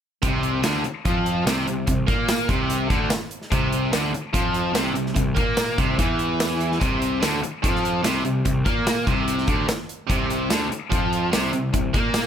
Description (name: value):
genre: classic rock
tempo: 146 BPM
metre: 4/4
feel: straight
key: C mixolydian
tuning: A4 = 441 Hz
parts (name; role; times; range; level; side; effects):
- biting overdriven guitar; riff; 0.2-12.3 s; C3 to Bb3; -26 LUFS; right 10 dB; spring reverb
- tight distorted guitar; riff; 0.2-12.3 s; C3 to Bb3; -26 LUFS; left 11 dB; distortion
- fuzz picked electric bass; bass; 0.2-12.3 s; C2 to Bb2; -28 LUFS; equal; overdrive
- big rock drum kit; drums; 0.2-12.2 s; hi-hat, kick drum, snare drum, tambourine; -24 LUFS; equal; none
room: small room ambience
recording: none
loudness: -20 LUFS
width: side -8 dB against mid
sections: 0.2-12.3 A section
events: none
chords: 0.2 C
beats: | 0.23 0.64 1.05 1.47 | 1.88 2.29 2.70 3.11 | 3.52 3.94 4.35 4.76 | 5.17 5.58 5.99 6.40 | 6.82 7.23 7.64 8.05 | 8.46 8.87 9.28 9.69 | 10.10 10.51 10.93 11.34 | 11.75 12.16